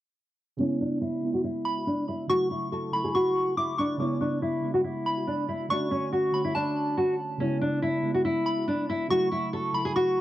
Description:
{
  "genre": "hip hop",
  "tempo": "141 BPM",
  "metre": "4/4",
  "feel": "half-time",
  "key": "C# phrygian",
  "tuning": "A4 = 440 Hz",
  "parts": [
    { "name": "nylon-string guitar", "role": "melody", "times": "0.6-10.2 s", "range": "C#4 to A4", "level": "-27 LUFS", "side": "left 1 dB", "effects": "low-pass filter, cassette tape, analog delay" },
    { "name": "muted felt-like synth keys", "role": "accompaniment", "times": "0.6-10.2 s", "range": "C#3 to C#5", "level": "-32 LUFS", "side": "right 2 dB", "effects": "chorus, low-pass filter, cassette tape" },
    { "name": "soft synth bell", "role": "second line", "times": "1.7-10.2 s", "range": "A5 to D6", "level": "-31 LUFS", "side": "equal", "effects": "chorus, phaser, cassette tape, analog delay" }
  ],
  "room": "moderate booth ambience, RT60 0.2 s",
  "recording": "home recording on cassette",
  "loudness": "-25 LUFS",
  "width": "side -14 dB against mid",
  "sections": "0.6-10.2 A section",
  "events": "filter sweep 0.6-10.2",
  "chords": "0.6 C#m7; 2.3 F#m7; 4.0 C#m7; 5.7 Dmaj7; 7.4 C#m7; 9.1 F#m7",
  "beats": "| 0.59 1.02 1.44 1.87 | 2.29 2.72 3.15 3.57 | 4.00 4.42 4.85 5.27 | 5.70 6.12 6.55 6.97 | 7.40 7.83 8.25 8.68 | 9.10 9.53 9.95"
}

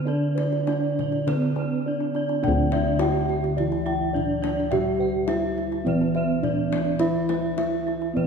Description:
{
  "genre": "Javanese gamelan",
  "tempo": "105 BPM",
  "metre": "4/4",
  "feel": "straight",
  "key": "unclear",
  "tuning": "A4 = 436 Hz",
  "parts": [
    { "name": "gamelan-type bronze metallophone", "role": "melody", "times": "0.0-8.3 s", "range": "C4-45c to G4-35c", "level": "-27 LUFS", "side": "right 3 dB", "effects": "none" },
    { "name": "gamelan-type bronze metallophone", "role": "accompaniment", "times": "0.0-8.3 s", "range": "D3 to C4-45c", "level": "-29 LUFS", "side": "left 2 dB", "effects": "none" },
    { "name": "gamelan-type bronze metallophone", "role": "arpeggios", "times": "0.0-8.3 s", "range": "C5-45c to G5-35c", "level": "-31 LUFS", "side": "right 7 dB", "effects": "none" },
    { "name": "gamelan-type bossed gongs", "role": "bass", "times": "0.0-8.3 s", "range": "D2 to G4-35c", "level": "-27 LUFS", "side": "equal", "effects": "none" },
    { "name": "gamelan-type bossed gongs", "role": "arpeggios", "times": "0.1-8.3 s", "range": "C5-45c to G5-35c", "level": "-31 LUFS", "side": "left 4 dB", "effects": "none" },
    { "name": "kendang", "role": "percussion", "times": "0.4-8.3 s", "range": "none", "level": "-33 LUFS", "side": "left 5 dB", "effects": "none" }
  ],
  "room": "wet concert hall reverb, RT60 2.0 s",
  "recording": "recorded in a church or concert hall",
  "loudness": "-21 LUFS",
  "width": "side -6 dB against mid",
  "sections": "0.0-2.4 A section; 2.4-8.3 B section",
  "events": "none",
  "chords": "none",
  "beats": "| 0.05 0.67 1.27 1.85 | 2.43 3.00 3.57 4.14 | 4.72 5.29 5.86 6.43 | 7.00 7.58 8.17"
}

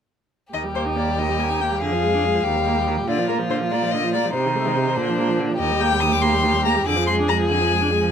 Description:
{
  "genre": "quick classical-period movement for string quartet",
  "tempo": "95 BPM (dotted quarters)",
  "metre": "6/8",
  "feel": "rubato",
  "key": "Eb major",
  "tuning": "A4 = 440 Hz",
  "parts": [
    { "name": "rich violin", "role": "melody", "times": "0.5-8.1 s", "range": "Bb4 to Eb6", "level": "-23 LUFS", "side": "left 6 dB", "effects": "none" },
    { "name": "rich violin", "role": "second line", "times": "0.5-8.1 s", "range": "D4 to Ab4", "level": "-24 LUFS", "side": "left 3 dB", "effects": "none" },
    { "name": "rich viola", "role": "accompaniment", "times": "0.5-8.1 s", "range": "C3 to Eb4", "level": "-24 LUFS", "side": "right 3 dB", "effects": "none" },
    { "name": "rich cello", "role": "bass", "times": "0.5-8.1 s", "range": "Eb2 to C3", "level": "-24 LUFS", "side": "right 4 dB", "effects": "none" }
  ],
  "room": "light reverb",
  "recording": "minimal, uncompressed stereo recording",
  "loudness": "-18 LUFS",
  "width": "side -8 dB against mid",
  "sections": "0.5-8.1 A section",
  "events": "none",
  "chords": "0.5 Eb; 1.8 Ddim/F; 2.4 Eb; 3.1 Bb; 4.3 Adim/C; 5.0 Bb; 5.6 Eb; 6.9 Ddim/F",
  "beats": "| 0.53 1.18 | 1.81 2.44 | 3.08 3.71 | 4.34 4.97 | 5.60 6.22 | 6.86 7.50"
}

